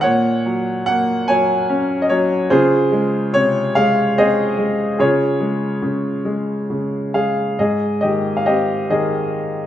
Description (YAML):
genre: classical, lyrical solo piano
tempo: 48 BPM (dotted quarters)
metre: 6/8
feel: uneven beats, rubato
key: Db major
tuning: A4 = 440 Hz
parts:
  - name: clear baby grand piano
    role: solo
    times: 0.0-9.7 s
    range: Ab2 to Ab5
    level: -15 LUFS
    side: equal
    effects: none
room: moderate recital hall reverb, RT60 1.4 s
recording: none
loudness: -15 LUFS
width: side -11 dB against mid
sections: 0.0-7.6 A section; 7.6-9.7 B section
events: none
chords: 0.0 Gbadd9/Bb; 2.5 Dbmaj7; 5.0 Db; 7.6 Ab